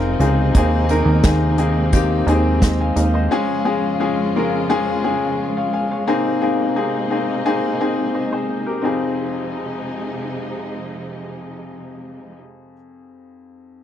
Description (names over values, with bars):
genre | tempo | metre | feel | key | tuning
piano-driven pop | 87 BPM | 4/4 | straight | F minor | A4 = 439 Hz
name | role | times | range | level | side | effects
bright upright piano | accompaniment | 0.0-13.8 s | F2 to Ab5 | -20 LUFS | left 3 dB | none
warm studio string section | sustained chords | 0.0-12.4 s | F2 to F4 | -26 LUFS | right 2 dB | none
plucky analog bass | bass | 0.0-3.3 s | F1 to Eb2 | -17 LUFS | right 1 dB | none
unplugged drum kit | drums | 0.2-3.1 s | hi-hat, kick drum, snare drum | -17 LUFS | right 1 dB | none
room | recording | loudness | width
light reverb | dry, close 1970s-style studio recording | -17 LUFS | side -10 dB against mid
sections
0.0-8.8 A section; 8.8-11.6 B section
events
none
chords
0.0 Fm7; 0.5 Abadd9/Eb; 3.3 Db/F; 6.1 Abadd9; 8.8 Fm7